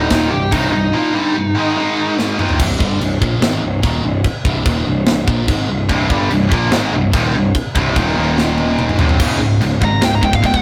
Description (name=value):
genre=heavy metal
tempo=145 BPM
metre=4/4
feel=straight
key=C phrygian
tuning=A4 = 440 Hz
part: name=high-gain lead guitar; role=melody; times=0.0-2.1, 9.8-10.6 s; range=Eb4 to Bb5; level=-20 LUFS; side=equal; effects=distortion
part: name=heavy high-gain guitar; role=riff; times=0.0-2.6, 5.9-10.6 s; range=C2 to Bb3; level=-21 LUFS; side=equal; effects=distortion
part: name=high-gain distorted guitar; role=riff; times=0.0-10.6 s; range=C2 to Bb3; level=-22 LUFS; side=equal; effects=distortion
part: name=fuzz picked electric bass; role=bass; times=0.0-10.6 s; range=C1 to Bb1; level=-22 LUFS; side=equal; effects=overdrive
part: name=tight metal drum kit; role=drums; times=0.1-10.6 s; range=china cymbal, crash cymbal, hi-hat, kick drum, snare drum, toms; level=-20 LUFS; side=equal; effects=none
room=light reverb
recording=rough rehearsal-room recording, warm saturation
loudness=-16 LUFS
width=mono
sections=0.0-2.6 A section; 2.6-9.2 B section; 9.2-10.6 C section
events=drum fill 2.2-2.6, 8.4-9.2; lead electric guitar solo 9.2-10.6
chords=0.1 Cm; 1.8 Ab5; 2.4 Eb5; 2.6 Cm; 8.2 Eb5; 9.0 C5; 9.2 Db5